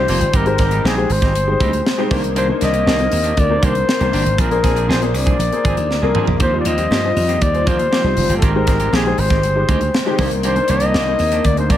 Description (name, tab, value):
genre	polished 1980s jazz-funk pop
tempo	119 BPM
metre	4/4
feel	straight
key	unclear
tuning	A4 = 440 Hz
part	breathy flugelhorn	melody	0.0-11.8 s	Ab4 to Eb5	-20 LUFS	left 2 dB	none
part	warm baby grand piano	accompaniment	0.0-11.8 s	G3 to C5	-21 LUFS	left 3 dB	ensemble chorus
part	semi-hollow electric guitar	riff	0.0-11.8 s	Eb3 to Ab4	-25 LUFS	right 5 dB	lush chorus
part	slap bass	bass	0.0-11.8 s	F1 to G2	-19 LUFS	right 1 dB	none
part	tight funk drum kit	drums	0.1-11.8 s	hi-hat, kick drum, snare drum, toms	-20 LUFS	equal	none
part	congas	percussion	6.7-11.8 s	none	-31 LUFS	right 3 dB	none
room	light reverb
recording	none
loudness	-14 LUFS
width	side -12 dB against mid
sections	0.0-11.8 A section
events	drum fill 5.9-6.4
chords	0.3 Cm9; 4.4 Bb9; 6.4 Eb69; 8.4 Cm9